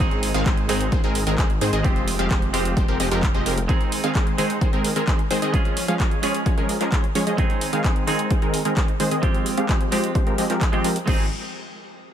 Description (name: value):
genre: EDM, festival progressive house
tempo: 130 BPM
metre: 4/4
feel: straight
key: Ab major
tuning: A4 = 439 Hz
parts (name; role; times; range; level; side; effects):
- semi-hollow electric guitar; accompaniment; 0.0-11.3 s; Ab3 to Ab4; -30 LUFS; right 3 dB; sidechain pumping, digital delay
- supersaw stab; riff; 0.0-11.2 s; Eb3 to F5; -23 LUFS; equal; sidechain pumping, low-pass filter, digital delay
- detuned saw bass; bass; 0.0-3.7, 11.1-11.3 s; F1 to Ab2; -27 LUFS; equal; tube saturation, sidechain pumping
- electronic kick drum; drums; 0.0-11.2 s; none; -21 LUFS; equal; none
- pop drum kit; drums; 0.0-11.2 s; crash cymbal, handclaps, hi-hat; -30 LUFS; right 1 dB; none
room: light reverb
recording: none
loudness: -19 LUFS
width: side -10 dB against mid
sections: 0.0-11.1 A section; 11.1-12.1 B section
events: filter sweep on supersaw synth 0.0-11.1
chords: 0.0 Ab; 1.8 Fmadd9; 3.7 Ab; 5.5 Db; 7.4 Ab; 9.2 Fmadd9; 11.1 Ab